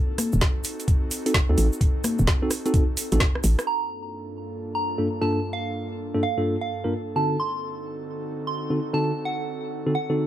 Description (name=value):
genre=UK garage, two-step garage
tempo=129 BPM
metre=4/4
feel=swing 64% on 16ths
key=G minor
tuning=A4 = 440 Hz
part: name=airy breathy pad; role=sustained chords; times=0.0-10.3 s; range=G2 to A4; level=-33 LUFS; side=right 1 dB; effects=chorus, sidechain pumping
part: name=garage drum kit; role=drums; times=0.2-3.7 s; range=congas, hi-hat, rim click, snare drum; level=-26 LUFS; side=left 1 dB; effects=overdrive, low-pass filter on hats, low-pass filter on snare, low-pass filter on perc
part: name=cabasa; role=percussion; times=0.2-3.7 s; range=none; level=-34 LUFS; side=right 2 dB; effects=none
part: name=hollow knocking FM bass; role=bass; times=0.3-3.6 s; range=D1 to D2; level=-19 LUFS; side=equal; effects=tube saturation, sidechain pumping
part: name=electronic kick drum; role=drums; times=0.4-3.3 s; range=none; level=-21 LUFS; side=equal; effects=none
part: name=mellow tine electric piano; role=stabs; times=1.3-10.3 s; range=G2 to Bb4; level=-25 LUFS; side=equal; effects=ping-pong delay
part: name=soft synth bell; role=melody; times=3.7-10.1 s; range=F5 to C6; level=-29 LUFS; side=right 3 dB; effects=chorus, phaser, ping-pong delay
room=light reverb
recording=none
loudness=-22 LUFS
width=side -12 dB against mid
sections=0.0-3.7 A section; 3.7-10.3 B section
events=drum fill 3.2-3.7; filter sweep on analog synth pad 3.7-10.3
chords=0.0 D7b9 (rootless); 3.7 Gm9; 7.2 D7b9